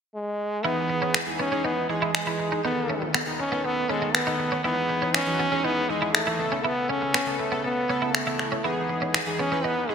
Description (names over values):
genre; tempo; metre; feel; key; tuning
dance-pop; 120 BPM; 4/4; straight; E major; A4 = 441 Hz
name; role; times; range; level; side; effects
brilliant trombone; melody; 0.1-9.9 s; G#3 to C#4; -26 LUFS; equal; none
chorused polysynth; accompaniment; 0.6-9.9 s; C#3 to B4; -29 LUFS; equal; none
twelve-string electric guitar; riff; 0.6-9.9 s; B3 to E4; -31 LUFS; right 2 dB; wide subtle chorus
electronic finger snaps; drums; 1.1-9.3 s; none; -27 LUFS; left 1 dB; gated reverb
room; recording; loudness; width
wet lush hall reverb, RT60 2.5 s; bright 1980s-style digital production; -23 LUFS; side -7 dB against mid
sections
0.6-9.9 A section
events
none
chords
0.0 N.C.; 0.6 Emaj7; 2.6 B7; 4.6 Emaj7; 6.4 Aadd9; 8.6 Emaj7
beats
0.14 | 0.65 1.15 1.65 2.15 | 2.65 3.15 3.65 4.14 | 4.64 5.14 5.64 6.14 | 6.64 7.14 7.64 8.14 | 8.64 9.14 9.64